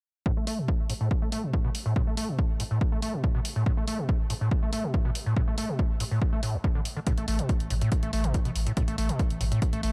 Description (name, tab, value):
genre	driving peak-time techno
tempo	141 BPM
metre	4/4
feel	straight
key	unclear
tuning	A4 = 441 Hz
part	overdriven acid bass	riff	0.3-9.9 s	A1 to A3	-32 LUFS	equal	subtle chorus, sidechain pumping, tape echo
part	electronic kick drum	drums	0.3-9.7 s	none	-29 LUFS	equal	none
part	electronic hi-hat	drums	0.5-9.9 s	none	-39 LUFS	equal	sidechain pumping on hats
part	saturated sub bass	bass	7.2-9.9 s	A1	-33 LUFS	equal	tube saturation, sidechain pumping, low-pass filter
room	digital ambience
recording	dark, warm production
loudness	-28 LUFS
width	mono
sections	0.3-9.9 A section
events	filter sweep on acid bass 0.3-9.9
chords	0.3 Asus2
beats	| 0.26 0.68 1.11 1.53 | 1.96 2.39 2.81 3.24 | 3.66 4.09 4.51 4.94 | 5.37 5.79 6.22 6.64 | 7.07 7.49 7.92 8.34 | 8.77 9.19 9.62